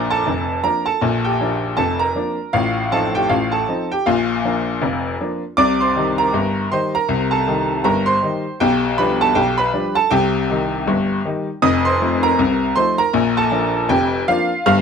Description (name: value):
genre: ragtime piano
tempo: 79 BPM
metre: 2/4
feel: swing 59% on 16ths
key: Bb major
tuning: A4 = 441 Hz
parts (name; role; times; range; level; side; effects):
- bright upright piano; solo; 0.0-14.8 s; F1 to F6; -16 LUFS; equal; none
room: light reverb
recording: close, detailed microphones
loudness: -16 LUFS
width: side -6 dB against mid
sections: 0.0-14.8 A section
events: none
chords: 0.0 Bb; 2.5 F7/A; 4.1 Bb; 5.6 Cm; 8.6 G7/B; 10.1 Cm; 11.6 F7; 13.1 Bb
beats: 0.26 | 1.02 1.78 | 2.54 3.30 | 4.06 4.82 | 5.58 6.33 | 7.09 7.85 | 8.61 9.36 | 10.12 10.88 | 11.63 12.39 | 13.14 13.90 | 14.66